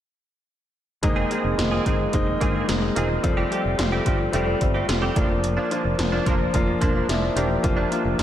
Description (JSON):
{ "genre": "1980s-style pop", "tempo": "109 BPM", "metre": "4/4", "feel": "straight", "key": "unclear", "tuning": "A4 = 436 Hz", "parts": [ { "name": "warm concert grand piano", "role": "accompaniment", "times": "1.0-8.2 s", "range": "F3 to G4", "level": "-24 LUFS", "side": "left 2 dB", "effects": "slapback echo" }, { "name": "direct-recorded clean electric guitar", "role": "riff", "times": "1.0-8.2 s", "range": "F3 to Ab4", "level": "-29 LUFS", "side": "right 3 dB", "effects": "analog chorus, tape echo, slapback echo" }, { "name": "funky polysynth comp", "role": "stabs", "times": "1.0-8.2 s", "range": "Eb3 to Bb4", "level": "-33 LUFS", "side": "right 2 dB", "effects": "none" }, { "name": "fretless electric bass", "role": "bass", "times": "1.0-8.2 s", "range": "E1 to G1", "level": "-27 LUFS", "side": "equal", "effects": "none" }, { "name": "80s electronic pad drums", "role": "drums", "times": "1.0-8.2 s", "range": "hi-hat, kick drum, snare drum", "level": "-25 LUFS", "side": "equal", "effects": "none" } ], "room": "wet concert hall reverb, RT60 2.0 s", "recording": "big arena sound", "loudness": "-20 LUFS", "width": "side -11 dB against mid", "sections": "1.0-8.2 A section", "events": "none", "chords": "1.0 Abadd9/F; 3.2 Fadd9; 5.2 Bb" }